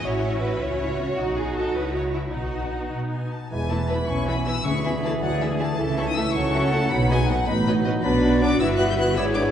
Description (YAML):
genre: quick classical-period movement for symphony orchestra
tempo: 105 BPM (dotted quarters)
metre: 6/8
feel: straight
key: E major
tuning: A4 = 440 Hz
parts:
  - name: rich chamber violin section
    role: melody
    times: 0.0-9.4 s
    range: C#5 to G6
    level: -31 LUFS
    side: left 4 dB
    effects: none
  - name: rich chamber violin section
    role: second line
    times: 0.0-9.5 s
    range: E4 to E5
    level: -32 LUFS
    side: left 2 dB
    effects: none
  - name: rich chamber viola section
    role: accompaniment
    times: 0.0-9.5 s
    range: E3 to G#4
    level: -29 LUFS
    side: equal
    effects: none
  - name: rich chamber double bass section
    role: bass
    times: 0.0-9.5 s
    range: E1 to B2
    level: -28 LUFS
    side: right 1 dB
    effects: none
  - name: rich studio cello section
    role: bass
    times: 0.0-9.5 s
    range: E2 to F#4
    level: -29 LUFS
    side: right 1 dB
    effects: none
  - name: mellow clarinet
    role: second line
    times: 3.5-9.4 s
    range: D4 to E4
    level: -32 LUFS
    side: equal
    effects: none
  - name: warm cor anglais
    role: second line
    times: 3.5-9.4 s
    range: G#4 to D5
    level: -34 LUFS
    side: right 2 dB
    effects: none
  - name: warm bassoon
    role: accompaniment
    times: 3.5-9.4 s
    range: E3 to B3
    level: -30 LUFS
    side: right 1 dB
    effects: none
  - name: mellow French horn section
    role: sustained chords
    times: 3.5-9.5 s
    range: E3 to G4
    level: -27 LUFS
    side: left 1 dB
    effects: none
  - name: bright silver concert flute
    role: second line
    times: 4.1-9.5 s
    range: C#5 to G#5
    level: -30 LUFS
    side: left 1 dB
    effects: none
  - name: timpani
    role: percussion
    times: 4.7-5.2 s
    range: D3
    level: -32 LUFS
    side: left 5 dB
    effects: none
room: wet concert hall reverb, RT60 2.1 s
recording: heard from further back in the room, nothing above 10.7 kHz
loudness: -21 LUFS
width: side -9 dB against mid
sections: 0.0-3.5 A section; 3.5-9.5 A section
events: none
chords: 0.0 F#m7/A; 1.2 B; 1.8 C#m; 2.3 B; 3.5 E; 4.7 E7/D; 5.8 A/C#; 6.4 F#m7/C#; 6.9 B; 7.5 B7/A; 8.0 Bm; 8.6 Em/G